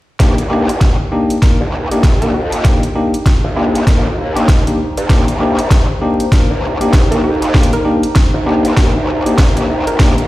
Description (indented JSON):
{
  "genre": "glitch hop",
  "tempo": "98 BPM",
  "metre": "4/4",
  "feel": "swing 60% on 16ths",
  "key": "C minor",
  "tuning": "A4 = 441 Hz",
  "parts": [
    { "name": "bright tine electric piano", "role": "stabs", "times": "0.2-10.2 s", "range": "Bb3 to Bb4", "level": "-17 LUFS", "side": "left 1 dB", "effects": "sidechain pumping, tape echo" },
    { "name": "growl bass", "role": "bass", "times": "0.2-10.3 s", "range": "Bb1 to G2", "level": "-19 LUFS", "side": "equal", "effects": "chorus, high-pass filter" },
    { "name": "drum and bass drum kit", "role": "drums", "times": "0.2-10.3 s", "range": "hi-hat, snare drum", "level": "-22 LUFS", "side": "equal", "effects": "overdrive" },
    { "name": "electronic kick drum", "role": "drums", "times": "0.2-10.1 s", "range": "none", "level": "-10 LUFS", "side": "equal", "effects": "overdrive" },
    { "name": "warbly tape-like pad", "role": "texture", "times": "0.2-10.3 s", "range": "Eb4 to Bb5", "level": "-23 LUFS", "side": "equal", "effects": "chorus, built-in reverb, sidechain pumping" },
    { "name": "woody wave-folded pluck", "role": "melody", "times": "2.2-10.3 s", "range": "F4 to Bb4", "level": "-25 LUFS", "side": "equal", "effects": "none" },
    { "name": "riser", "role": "sound effects", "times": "10.1-10.3 s", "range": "none", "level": "-25 LUFS", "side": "equal", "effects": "none" }
  ],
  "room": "light reverb, digital ambience",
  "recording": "played on a big sound system in a bare room, large studio reverb, vinyl crackle",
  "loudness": "-11 LUFS",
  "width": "side -17 dB against mid",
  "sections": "0.2-10.3 A section",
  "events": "build-up 0.2-10.3; drum fill 0.2-10.3; riser 10.1",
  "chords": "0.2 Cm7"
}